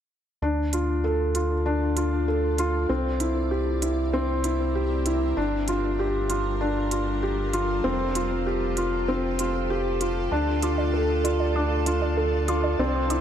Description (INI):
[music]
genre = piano and strings electronica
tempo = 97 BPM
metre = 4/4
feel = straight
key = D minor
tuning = A4 = 441 Hz
[part]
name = granular cloud pad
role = sustained chords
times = 1.6-13.2 s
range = G3 to E5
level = -33 LUFS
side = equal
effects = built-in reverb, shimmer reverb
[part]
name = felt-muted upright piano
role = riff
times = 0.4-13.2 s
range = C4 to A4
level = -25 LUFS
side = equal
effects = ping-pong delay, shimmer reverb
[part]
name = round analog bass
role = bass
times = 0.4-13.2 s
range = F1 to D2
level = -28 LUFS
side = equal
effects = none
[part]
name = electronic hi-hat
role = drums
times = 0.7-13.2 s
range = none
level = -33 LUFS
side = right 3 dB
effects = none
[part]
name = warbly dusty pluck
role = arpeggios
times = 10.3-13.2 s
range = D4 to D6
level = -32 LUFS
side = right 4 dB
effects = chorus, ping-pong delay, shimmer reverb
[sound]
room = moderate concert hall reverb, RT60 2.1 s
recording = none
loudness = -22 LUFS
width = side -9 dB against mid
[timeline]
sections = 0.4-13.2 A section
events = fade-in on ambient pad 0.4-13.2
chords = 0.4 Dm; 2.9 C7; 5.4 Gm7; 7.8 Fadd9; 10.3 Dm